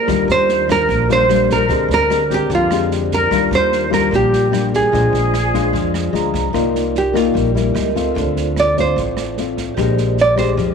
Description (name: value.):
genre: bossa nova.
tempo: 148 BPM.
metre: 4/4.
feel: straight.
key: unclear.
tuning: A4 = 438 Hz.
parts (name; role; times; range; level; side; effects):
nylon-string guitar; melody; 0.0-10.5 s; F4 to D5; -17 LUFS; right 4 dB; none.
bright large flute ensemble; second line; 0.0-6.3 s; F4 to C5; -21 LUFS; left 1 dB; none.
vibraphone with medium mallets; accompaniment; 0.0-10.7 s; Eb4 to Bb5; -25 LUFS; right 12 dB; none.
nylon-string guitar; accompaniment; 0.1-10.7 s; A2 to G4; -20 LUFS; left 13 dB; none.
upright bass; bass; 0.1-10.7 s; A1 to F2; -22 LUFS; right 1 dB; tube saturation.
open jazz drum kit; drums; 0.1-10.7 s; kick drum, rim click, snare drum; -28 LUFS; right 5 dB; none.
room: moderate spring reverb, RT60 2.1 s.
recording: 1960s-style stereo with parts hard left and right.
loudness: -14 LUFS.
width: side -6 dB against mid.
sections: 0.0-6.5 A section; 6.5-10.7 B section.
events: vibraphone fill 5.9-6.5; nylon-string guitar solo 6.5-10.7.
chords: 0.1 Ebmaj9; 1.7 Bb13/D; 3.3 Ebmaj9; 4.9 Bb7; 6.5 Cm11; 7.8 C#dim7; 8.2 Dm7; 9.8 Bb13.